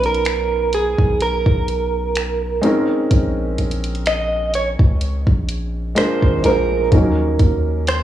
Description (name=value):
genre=contemporary R&B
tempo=63 BPM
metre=4/4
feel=swing 54% on 16ths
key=unclear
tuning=A4 = 440 Hz
part: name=direct-recorded clean electric guitar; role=melody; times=0.0-8.0 s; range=Ab4 to Eb5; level=-20 LUFS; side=right 3 dB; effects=cassette tape, analog delay
part: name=felt-muted upright piano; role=accompaniment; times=0.0-8.0 s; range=F3 to C5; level=-21 LUFS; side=equal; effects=cassette tape
part: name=long sustained 808-style bass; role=bass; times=0.0-8.0 s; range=Ab1 to Eb2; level=-22 LUFS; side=equal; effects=none
part: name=smooth R&B drum kit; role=drums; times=0.0-8.0 s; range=finger snaps, hi-hat, kick drum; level=-18 LUFS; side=equal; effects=none
room=light reverb, digital ambience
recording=home recording on cassette, studio reverb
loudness=-15 LUFS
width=side -12 dB against mid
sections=0.0-8.0 A section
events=none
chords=0.0 Cbmaj9; 2.6 Bbm11; 6.0 Bb7; 6.9 Ebm7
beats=0.26 1.21 2.16 | 3.11 4.07 5.02 5.97 | 6.92 7.87